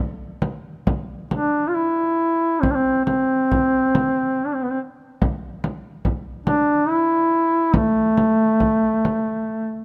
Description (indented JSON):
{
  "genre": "caucasian folk, Caucasian lament",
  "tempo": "65-73 BPM",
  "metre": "3/4",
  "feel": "rubato",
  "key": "A minor",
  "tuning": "A4 = 442 Hz",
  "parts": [
    { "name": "frame drum", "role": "percussion", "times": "0.4-9.3 s", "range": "none", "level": "-26 LUFS", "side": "equal", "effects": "none" },
    { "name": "warm duduk", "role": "melody", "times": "1.3-9.8 s", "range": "A3 to F4", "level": "-20 LUFS", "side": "equal", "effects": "none" }
  ],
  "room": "moderate concert hall reverb, RT60 2.1 s",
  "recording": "close, detailed microphones",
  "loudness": "-21 LUFS",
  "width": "mono",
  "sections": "0.0-9.8 A section",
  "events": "none",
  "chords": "none"
}